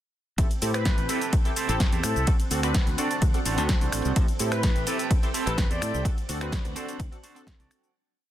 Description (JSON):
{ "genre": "filtered disco house", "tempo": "127 BPM", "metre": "4/4", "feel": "straight", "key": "D mixolydian", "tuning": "A4 = 440 Hz", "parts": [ { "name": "funky polysynth comp", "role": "accompaniment", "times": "0.4-7.9 s", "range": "C4 to B4", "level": "-32 LUFS", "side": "right 1 dB", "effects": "chorus, phaser, cassette tape, sidechain pumping" }, { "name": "string machine, full ensemble", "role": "sustained chords", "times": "0.4-7.9 s", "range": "C4 to G5", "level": "-35 LUFS", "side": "right 2 dB", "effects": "phaser, ensemble chorus, sidechain pumping" }, { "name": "modern bright fingered electric bass", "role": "bass", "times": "0.4-7.7 s", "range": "A1 to A2", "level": "-30 LUFS", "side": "equal", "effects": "sidechain pumping" }, { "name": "electronic kick drum", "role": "drums", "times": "0.4-7.6 s", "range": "none", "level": "-24 LUFS", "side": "equal", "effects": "overdrive, small room ambience" }, { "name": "punchy analog drum machine", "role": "drums", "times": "0.4-7.9 s", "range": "finger snaps, hi-hat, ride cymbal, shaker, snare drum", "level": "-32 LUFS", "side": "left 1 dB", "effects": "overdrive, sidechain pumping on hats, small room ambience, sidechain pumping on cymbals, sidechain pumping on perc" }, { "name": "dark trumpet section", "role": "melody", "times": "0.7-6.1 s", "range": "A4 to D5", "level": "-35 LUFS", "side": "left 2 dB", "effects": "sidechain pumping, ping-pong delay" }, { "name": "twangy electric guitar", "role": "riff", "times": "0.9-7.9 s", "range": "D4 to D5", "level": "-32 LUFS", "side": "right 5 dB", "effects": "sidechain pumping" } ], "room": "little or no reverb", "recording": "dense, heavily limited modern master", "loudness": "-23 LUFS", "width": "side -12 dB against mid", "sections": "0.4-7.9 drop", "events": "drop 0.4-7.9; fade-out 5.4-7.9", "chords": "0.4 Am7; 2.3 D7; 4.2 Am7; 6.1 D7" }